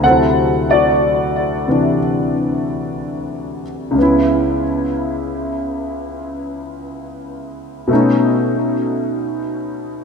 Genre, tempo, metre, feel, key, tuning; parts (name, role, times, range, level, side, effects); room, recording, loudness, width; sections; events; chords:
solo jazz; 61 BPM; 4/4; swing 68% on 8ths; A4 = 441 Hz
warm concert grand piano; solo; 0.0-10.0 s; Db2 to F#5; -16 LUFS; left 1 dB; analog chorus, ping-pong delay
wet lush hall reverb, RT60 2.1 s; dreamy mix soaked in reverb; -15 LUFS; side -5 dB against mid
0.0-10.0 A section
0.0 D9; 4.0 Dbm7; 7.9 B9